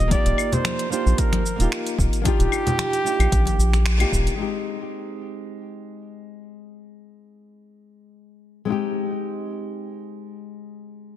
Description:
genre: sunset chillout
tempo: 112 BPM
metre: 4/4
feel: swing 54% on 16ths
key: F dorian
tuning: A4 = 440 Hz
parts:
  - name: warm flugelhorn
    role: melody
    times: 0.0-4.1 s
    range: G4 to D5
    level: -26 LUFS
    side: right 2 dB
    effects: digital delay
  - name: nylon-string guitar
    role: accompaniment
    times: 0.0-11.2 s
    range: Ab3 to G4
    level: -28 LUFS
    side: moving between left 10 dB and right 6 dB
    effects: auto-pan, digital delay
  - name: round analog bass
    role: bass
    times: 0.0-4.3 s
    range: Eb1 to Bb1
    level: -19 LUFS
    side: equal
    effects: none
  - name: smooth R&B drum kit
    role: drums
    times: 0.0-4.4 s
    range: claves, finger snaps, hi-hat, shaker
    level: -29 LUFS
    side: left 1 dB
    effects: soft clipping on snare
  - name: electronic kick drum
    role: drums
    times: 0.1-4.2 s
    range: none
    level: -23 LUFS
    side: equal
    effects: none
  - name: congas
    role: percussion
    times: 0.1-3.8 s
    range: none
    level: -28 LUFS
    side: left 2 dB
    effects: none
room: light reverb, small room ambience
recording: dense, heavily limited modern master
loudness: -20 LUFS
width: side -12 dB against mid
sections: 0.0-4.4 A section; 4.4-11.2 B section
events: band accent 3.9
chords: 0.0 Ebmaj7; 4.4 Fm7 (rootless)

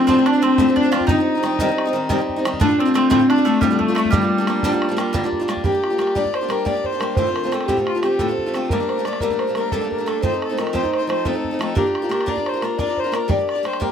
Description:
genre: celtic folk, Celtic slip jig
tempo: 118 BPM (dotted quarters)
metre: 9/8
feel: straight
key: G minor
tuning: A4 = 440 Hz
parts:
  - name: marimba with soft mallets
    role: melody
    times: 0.0-13.9 s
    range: G3 to D5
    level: -20 LUFS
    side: left 1 dB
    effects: none
  - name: mandolin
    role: second line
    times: 0.0-5.3 s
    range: G3 to F4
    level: -24 LUFS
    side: right 6 dB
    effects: none
  - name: warm fiddle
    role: second line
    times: 0.0-13.9 s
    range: G3 to D5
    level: -27 LUFS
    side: left 5 dB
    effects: none
  - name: picked steel-string acoustic guitar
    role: accompaniment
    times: 0.0-13.9 s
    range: D2 to Bb4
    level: -22 LUFS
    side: equal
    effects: none
  - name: bodhran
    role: percussion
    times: 0.1-13.9 s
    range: none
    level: -26 LUFS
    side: right 2 dB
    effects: none
room: light reverb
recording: close, detailed microphones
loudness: -17 LUFS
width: side -8 dB against mid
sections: 0.0-5.6 A section; 5.6-13.9 B section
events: none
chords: 0.0 Dm7; 1.1 Cm; 2.6 Dm; 4.1 Gm7; 5.6 Gm; 7.2 Dm7; 8.7 Gmadd9; 10.2 F7; 11.8 Bb; 13.3 Gm

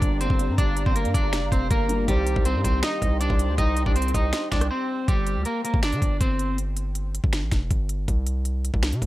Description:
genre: hip hop, trap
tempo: 160 BPM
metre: 4/4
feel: half-time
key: G minor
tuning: A4 = 439 Hz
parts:
  - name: electric guitar at the edge of break-up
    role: melody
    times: 0.0-6.6 s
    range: G3 to Eb5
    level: -26 LUFS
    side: equal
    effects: analog delay
  - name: dark baby grand piano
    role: accompaniment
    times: 0.0-5.1 s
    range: D3 to C5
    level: -34 LUFS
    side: left 2 dB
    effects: none
  - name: ethereal airy pad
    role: sustained chords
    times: 0.0-5.1 s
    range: G4 to C6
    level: -35 LUFS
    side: equal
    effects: ensemble chorus, built-in reverb
  - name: hard-hitting 808-style bass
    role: bass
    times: 0.0-9.1 s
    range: F1 to D3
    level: -25 LUFS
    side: equal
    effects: none
  - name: trap drum kit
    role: drums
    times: 0.0-9.1 s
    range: finger snaps, hi-hat, kick drum, rim click, snare drum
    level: -24 LUFS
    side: equal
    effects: none
room: little or no reverb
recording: none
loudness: -21 LUFS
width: side -16 dB against mid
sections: 0.0-5.1 A section; 5.1-9.1 B section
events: break 4.7-5.1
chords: 0.0 Gm7; 2.1 Cm; 5.1 G5; 8.1 N.C.

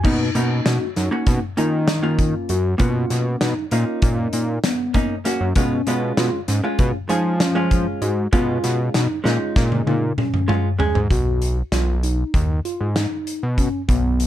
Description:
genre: progressive instrumental, band music in an uneven meter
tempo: 195 BPM (eighths)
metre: 9/8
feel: straight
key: B lydian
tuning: A4 = 440 Hz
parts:
  - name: vintage hollow-body jazz guitar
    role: accompaniment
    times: 0.0-11.0 s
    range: G#3 to G#4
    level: -24 LUFS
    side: equal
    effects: none
  - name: fat analog bass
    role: bass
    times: 0.0-14.3 s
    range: B1 to E#3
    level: -20 LUFS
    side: equal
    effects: none
  - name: loose indie drum kit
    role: drums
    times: 0.0-14.3 s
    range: crash cymbal, hi-hat, kick drum, snare drum, toms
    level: -22 LUFS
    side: equal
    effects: none
  - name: mellow tine electric piano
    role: arpeggios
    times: 0.1-14.3 s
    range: B3 to G#4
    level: -26 LUFS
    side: left 1 dB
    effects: medium stereo tremolo
room: light reverb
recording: dark, warm production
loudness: -18 LUFS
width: side -12 dB against mid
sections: 0.0-11.1 A section; 11.1-14.3 B section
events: drum fill 9.3-11.1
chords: 0.0 Bmaj7; 5.6 C#; 11.1 B

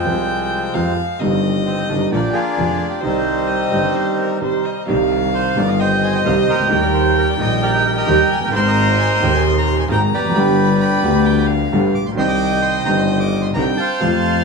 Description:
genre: tango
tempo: 131 BPM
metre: 4/4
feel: rubato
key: C minor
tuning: A4 = 438 Hz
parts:
  - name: bandoneon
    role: melody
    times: 0.0-14.4 s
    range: F3 to D6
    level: -19 LUFS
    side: right 2 dB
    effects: tape echo
  - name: warm violin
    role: second line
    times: 0.0-14.4 s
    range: Bb4 to C6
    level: -24 LUFS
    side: left 7 dB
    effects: none
  - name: warm grand piano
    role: accompaniment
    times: 0.0-14.4 s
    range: Eb1 to Ab4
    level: -19 LUFS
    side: right 2 dB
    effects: none
  - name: clear double bass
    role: bass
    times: 0.0-14.4 s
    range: F1 to F2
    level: -20 LUFS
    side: left 1 dB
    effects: none
room: light reverb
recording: studio ambience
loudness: -14 LUFS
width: side -4 dB against mid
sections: 0.0-4.9 A section; 4.9-14.4 B section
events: break 4.0-4.9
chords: 0.0 Fm; 1.2 Cm/G; 2.1 Bb; 3.0 Cm; 6.7 Eb; 8.5 Abadd9; 10.4 G; 12.2 Cmadd9

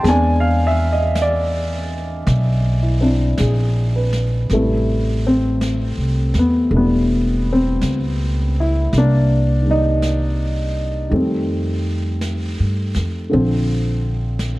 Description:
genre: jazz ballad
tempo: 54 BPM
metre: 4/4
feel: swing 68% on 8ths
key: A minor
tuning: A4 = 440 Hz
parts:
  - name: dark upright piano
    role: accompaniment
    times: 0.0-14.6 s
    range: C3 to G#5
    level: -19 LUFS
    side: equal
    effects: none
  - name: upright bass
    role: bass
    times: 0.0-14.6 s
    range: E1 to G2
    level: -18 LUFS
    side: equal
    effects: none
  - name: jazz brush drum kit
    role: drums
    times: 0.1-14.6 s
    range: brushed snare drum, hi-hat, snare drum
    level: -32 LUFS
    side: right 1 dB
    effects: none
room: light reverb, small room reverb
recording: dark, warm production, vinyl crackle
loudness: -16 LUFS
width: side -19 dB against mid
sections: 0.0-4.5 A section; 4.5-14.6 B section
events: none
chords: 0.1 E7b13; 4.5 Am9; 8.9 Cm9; 11.1 F9; 13.3 Bbmaj9

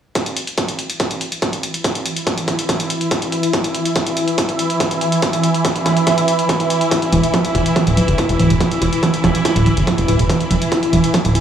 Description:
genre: driving peak-time techno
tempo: 142 BPM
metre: 4/4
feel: straight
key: unclear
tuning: A4 = 443 Hz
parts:
  - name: swarming drone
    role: drone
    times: 1.7-11.4 s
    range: E3 to E4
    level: -18 LUFS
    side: right 1 dB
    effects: built-in reverb, phaser, sidechain pumping
  - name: electronic hi-hat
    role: drums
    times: 0.2-11.4 s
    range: none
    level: -24 LUFS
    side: left 1 dB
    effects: sidechain pumping on hats
  - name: electronic kick drum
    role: drums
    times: 0.2-11.2 s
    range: none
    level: -21 LUFS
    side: equal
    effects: distortion, overdrive, high-pass filter on kick
  - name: warbly dusty pluck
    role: riff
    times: 6.9-11.4 s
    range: E3 to E4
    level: -18 LUFS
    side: right 2 dB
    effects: chorus, tube saturation, sidechain pumping, dub echo
  - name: tight sequencer bass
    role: bass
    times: 7.1-11.4 s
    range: D1 to G1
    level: -16 LUFS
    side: equal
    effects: sidechain pumping
room: moderate plate reverb, RT60 1.3 s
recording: played on a big sound system in a bare room, large studio reverb, studio ambience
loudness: -15 LUFS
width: side -9 dB against mid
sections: 0.2-11.4 A section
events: none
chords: none

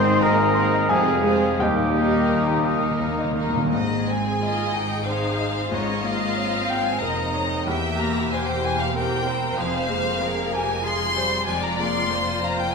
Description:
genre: classical, romantic movement for piano and orchestra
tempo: 82-97 BPM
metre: 3/4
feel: rubato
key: Ab major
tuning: A4 = 438 Hz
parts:
  - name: clear concert grand piano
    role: melody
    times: 0.0-12.7 s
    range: Eb2 to Eb6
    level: -26 LUFS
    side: left 2 dB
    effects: none
  - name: rich chamber violin section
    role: melody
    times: 0.0-12.7 s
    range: Eb4 to C6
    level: -28 LUFS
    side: left 2 dB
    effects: none
  - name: bright large flute ensemble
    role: second line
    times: 0.0-3.0 s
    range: G5 to C6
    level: -29 LUFS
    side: equal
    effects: none
  - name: clear oboe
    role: second line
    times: 0.0-3.0 s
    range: G4 to C5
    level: -27 LUFS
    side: equal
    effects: none
  - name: clear symphonic violin section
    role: second line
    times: 0.0-12.7 s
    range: C4 to F5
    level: -29 LUFS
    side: left 2 dB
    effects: none
  - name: dark clarinet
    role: second line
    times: 0.0-3.0 s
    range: G4 to C5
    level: -31 LUFS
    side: left 2 dB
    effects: none
  - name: rich studio viola section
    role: accompaniment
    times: 0.0-12.7 s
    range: G3 to C5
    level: -30 LUFS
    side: right 1 dB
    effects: none
  - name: clear trombone section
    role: sustained chords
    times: 0.0-3.4 s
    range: C3 to Bb3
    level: -30 LUFS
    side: right 4 dB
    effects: none
  - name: mellow French horn section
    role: sustained chords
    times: 0.0-3.4 s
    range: Bb3 to Ab4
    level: -29 LUFS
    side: left 6 dB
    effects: none
  - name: clear trumpet section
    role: stabs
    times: 0.0-3.3 s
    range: Eb5 to F5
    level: -28 LUFS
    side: equal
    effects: none
  - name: bright studio cello section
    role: bass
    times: 0.0-12.7 s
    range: E2 to C4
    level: -32 LUFS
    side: right 3 dB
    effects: none
  - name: clear chamber double bass section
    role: bass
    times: 0.0-12.7 s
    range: E1 to F2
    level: -33 LUFS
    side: right 4 dB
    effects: none
  - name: warm tuba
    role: bass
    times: 0.0-3.6 s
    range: F1 to Eb2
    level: -30 LUFS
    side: right 4 dB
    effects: none
  - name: timpani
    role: percussion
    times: 0.0-6.7 s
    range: Ab2 to Eb3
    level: -30 LUFS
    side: left 1 dB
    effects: none
room: wet scoring stage reverb, RT60 1.9 s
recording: minimal, uncompressed stereo recording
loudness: -20 LUFS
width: side -5 dB against mid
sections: 0.0-3.7 A section; 3.7-12.7 B section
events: timpani fill 1.6-3.7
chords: 0.0 Ab; 0.9 Fm; 1.6 Eb; 3.7 Ab; 5.7 Eb7/Ab; 7.7 C7/E; 9.6 Fm; 11.5 Bb7/F

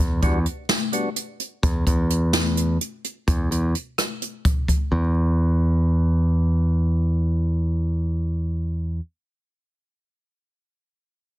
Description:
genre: progressive instrumental, band music in an uneven meter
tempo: 256 BPM (eighths)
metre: 7/8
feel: straight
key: E minor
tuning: A4 = 440 Hz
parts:
  - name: modern bright picked electric bass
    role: bass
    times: 0.0-9.0 s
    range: E2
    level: -20 LUFS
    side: equal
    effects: none
  - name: percussive tonewheel organ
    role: accompaniment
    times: 0.2-1.1 s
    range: G3 to F#4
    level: -27 LUFS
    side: equal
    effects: overdrive, stopped rotary speaker
  - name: jazz brush drum kit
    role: drums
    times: 0.2-4.8 s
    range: hi-hat, kick drum, rim click, snare drum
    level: -22 LUFS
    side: equal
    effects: none
room: little or no reverb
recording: dense, heavily limited modern master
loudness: -20 LUFS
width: side -15 dB against mid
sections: 0.0-4.9 A section; 4.9-8.2 B section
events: none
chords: 0.0 Em7; 1.6 N.C.

